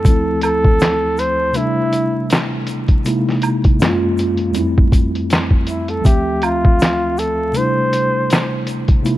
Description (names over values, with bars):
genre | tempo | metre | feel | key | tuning
lo-fi hip hop | 80 BPM | 4/4 | swing 57% on 16ths | unclear | A4 = 440 Hz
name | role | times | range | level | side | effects
breathy flugelhorn | melody | 0.0-8.7 s | E4 to C5 | -19 LUFS | equal | low-pass filter, analog delay
mellow tine electric piano | accompaniment | 0.0-9.2 s | D2 to E5 | -18 LUFS | equal | medium stereo tremolo, low-pass filter
lo-fi sampler-style drum kit | drums | 0.0-9.2 s | handclaps, hi-hat, kick drum, snare drum | -15 LUFS | equal | vintage 12-bit sampler grit
egg shaker and woodblock | percussion | 0.1-9.2 s | none | -28 LUFS | right 6 dB | none
room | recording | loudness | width
light reverb | vinyl crackle | -14 LUFS | side -15 dB against mid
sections
0.0-9.2 A section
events
none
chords
0.0 Dm9; 1.5 C6; 3.0 C7alt; 3.8 F#maj9; 4.5 Fmaj9; 6.0 Dm9; 7.5 C6